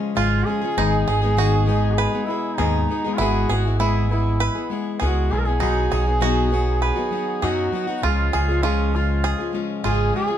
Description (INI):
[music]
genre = folk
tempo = 99 BPM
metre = 4/4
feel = straight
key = unclear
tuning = A4 = 440 Hz
[part]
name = picked plugged-in old ladder-braced acoustic guitar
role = accompaniment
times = 0.0-10.4 s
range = G#2 to G#4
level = -24 LUFS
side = left 4 dB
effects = none
[part]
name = pedal harmonium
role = sustained chords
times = 0.0-10.4 s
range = B2 to G#4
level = -34 LUFS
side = equal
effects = none
[part]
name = bluegrass banjo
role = arpeggios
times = 0.0-10.4 s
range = D#4 to B4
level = -27 LUFS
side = right 4 dB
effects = none
[part]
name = warm duduk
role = melody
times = 0.2-10.4 s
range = C#4 to A#4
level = -25 LUFS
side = right 2 dB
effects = none
[part]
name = picked electric bass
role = bass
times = 0.2-10.1 s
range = G#1 to F#2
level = -21 LUFS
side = equal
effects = none
[sound]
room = moderate small room reverb, RT60 0.5 s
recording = band playing live in one room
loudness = -18 LUFS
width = side -10 dB against mid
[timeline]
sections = 0.0-10.4 A section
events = none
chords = 0.0 C#; 0.8 G#m; 3.2 E/G#; 5.6 B; 8.0 C#